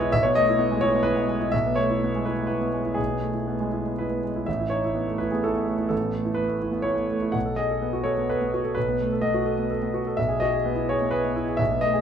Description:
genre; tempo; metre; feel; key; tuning
neoclassical minimalist piano; 126 BPM; 3/4; rubato; E major; A4 = 439 Hz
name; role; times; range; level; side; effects
clear concert grand piano; solo; 0.0-12.0 s; A1 to F#5; -22 LUFS; equal; none
room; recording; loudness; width
moderate studio reverb, RT60 0.6 s; minimal, uncompressed stereo recording; -22 LUFS; side -8 dB against mid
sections
0.0-4.5 A section; 4.5-12.0 A section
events
none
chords
0.0 Emaj7/B; 4.5 Aadd9; 7.3 B7; 10.2 Emaj7/B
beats
| 0.10 0.58 1.05 | 1.52 2.00 2.48 | 2.98 3.48 3.98 | 4.47 4.96 5.44 | 5.92 6.39 6.87 | 7.35 7.83 8.30 | 8.76 9.23 9.70 | 10.18 10.65 11.12 | 11.60

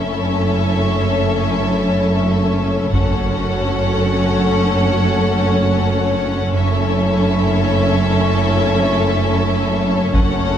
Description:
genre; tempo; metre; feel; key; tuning
cinematic, epic orchestral film score; free time; none; none; unclear; A4 = 440 Hz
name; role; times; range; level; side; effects
rich symphonic violin section; melody; 0.0-10.6 s; E5 to F#5; -25 LUFS; left 4 dB; none
warm symphonic violin section; second line; 0.0-10.6 s; A4; -26 LUFS; left 2 dB; none
rich symphonic viola section; accompaniment; 0.0-10.6 s; C#4; -23 LUFS; right 1 dB; none
dark French horn section; sustained chords; 0.0-10.6 s; A3 to C#4; -25 LUFS; left 3 dB; none
rich studio string section; sustained chords; 0.0-10.6 s; C#4 to C#5; -23 LUFS; left 4 dB; none
rich symphonic double bass section; bass; 0.0-10.6 s; F#1; -21 LUFS; right 2 dB; none
warm symphonic cello section; bass; 0.0-10.6 s; F#2; -20 LUFS; right 2 dB; none
taiko ensemble; drums; 2.9-4.1, 10.1-10.6 s; none; -19 LUFS; equal; none
room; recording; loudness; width
wet recital hall reverb, RT60 1.7 s; heard from further back in the room; -14 LUFS; side -9 dB against mid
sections
0.0-10.6 A section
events
build-up 0.0-10.6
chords
0.0 A/F#; 2.9 F#m; 6.5 A/F#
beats
free time

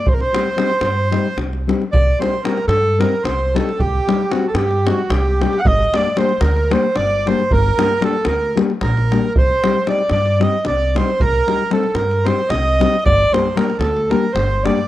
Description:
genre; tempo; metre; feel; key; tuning
balkan folk, Balkan wedding band; 227 BPM (eighths); 7/8; straight; C dorian sharp4; A4 = 441 Hz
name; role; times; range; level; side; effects
mellow alto saxophone; melody; 0.0-14.9 s; F#4 to F#5; -19 LUFS; equal; none
accordion; second line; 0.0-14.9 s; F#4 to F#5; -24 LUFS; right 5 dB; none
upright bass; bass; 0.1-14.7 s; G1 to G2; -19 LUFS; right 1 dB; none
davul; percussion; 0.1-14.8 s; none; -22 LUFS; equal; none
nylon-string guitar; accompaniment; 0.3-14.8 s; G3 to G4; -19 LUFS; left 5 dB; none
room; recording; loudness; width
little or no reverb; dry, close 1970s-style studio recording; -14 LUFS; side -14 dB against mid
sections
0.0-1.9 A section; 1.9-14.9 A section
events
none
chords
0.1 Cm; 5.7 Gm; 9.4 Cm; 13.1 Gm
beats
| 0.06 0.33 0.59 0.86 1.13 1.40 1.66 | 1.93 2.20 2.47 2.73 3.00 3.27 3.53 | 3.80 4.06 4.33 4.60 4.86 5.13 5.39 | 5.66 5.92 6.19 6.45 6.72 6.98 7.25 | 7.51 7.78 8.04 8.31 8.57 8.84 9.10 | 9.36 9.63 9.89 10.16 10.42 10.68 10.95 | 11.21 11.47 11.74 12.00 12.27 12.53 12.79 | 13.05 13.32 13.58 13.85 14.11 14.37 14.63

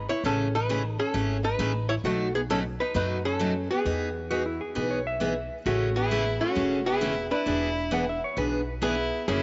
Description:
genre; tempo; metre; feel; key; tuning
country, western swing; 133 BPM; 4/4; swing 66% on 8ths; E major; A4 = 440 Hz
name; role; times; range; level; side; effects
archtop guitar, miked and amplified; melody; 0.0-9.4 s; A3 to C#5; -30 LUFS; equal; none
upright bass; bass; 0.0-9.4 s; E1 to F#2; -35 LUFS; equal; none
picked steel-string acoustic guitar; accompaniment; 0.2-9.4 s; B2 to G#4; -33 LUFS; equal; none
clean lap steel guitar; second line; 4.3-8.7 s; E4 to F#5; -35 LUFS; equal; none
clear fiddle; second line; 5.7-9.4 s; C#4 to E4; -34 LUFS; equal; none
room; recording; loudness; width
light reverb, small room ambience; nothing above 7.6 kHz; -27 LUFS; mono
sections
0.0-9.4 A section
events
none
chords
0.2 Amaj7; 2.0 B9; 3.9 Emaj7; 5.7 Amaj9; 7.5 E7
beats
| 0.24 0.69 1.15 1.60 | 2.05 2.50 2.95 3.40 | 3.86 4.31 4.76 5.21 | 5.66 6.12 6.57 7.02 | 7.47 7.92 8.38 8.83 | 9.28

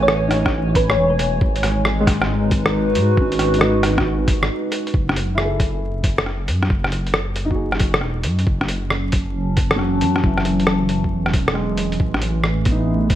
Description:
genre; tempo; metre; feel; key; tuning
future garage; 136 BPM; 4/4; swing 66% on 16ths; F# dorian; A4 = 440 Hz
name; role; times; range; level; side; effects
thumb-piano-like synth pluck; melody; 0.0-1.2 s; B4 to C#5; -21 LUFS; equal; ensemble chorus, vintage 12-bit sampler grit, ping-pong delay
felt-muted upright piano; accompaniment; 0.0-13.2 s; E3 to A4; -27 LUFS; left 1 dB; lush chorus, sidechain pumping, ping-pong delay
warbly tape-like pad; sustained chords; 0.0-4.9, 8.5-13.2 s; E3 to A5; -22 LUFS; right 1 dB; chorus, built-in reverb, sidechain pumping
dark detuned saw bass; bass; 0.0-13.2 s; E1 to G#2; -22 LUFS; equal; sidechain pumping
lo-fi sampler-style drum kit; drums; 0.1-13.2 s; hi-hat, rim click; -22 LUFS; equal; studio ambience
electronic kick drum; drums; 0.5-13.2 s; none; -19 LUFS; equal; studio ambience
room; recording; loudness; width
moderate plate reverb, RT60 2.1 s; bright 1980s-style digital production, vinyl crackle; -16 LUFS; side -12 dB against mid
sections
0.0-4.9 A section; 4.9-13.2 B section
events
break 4.5-4.9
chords
0.0 F#m7; 1.4 G#m7; 4.9 F#m7; 12.0 Amaj7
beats
0.09 0.53 0.97 | 1.41 1.85 2.29 2.73 | 3.17 3.62 4.06 4.50 | 4.94 5.38 5.82 6.26 | 6.70 7.14 7.59 8.03 | 8.47 8.91 9.35 9.79 | 10.23 10.67 11.12 11.56 | 12.00 12.44 12.88

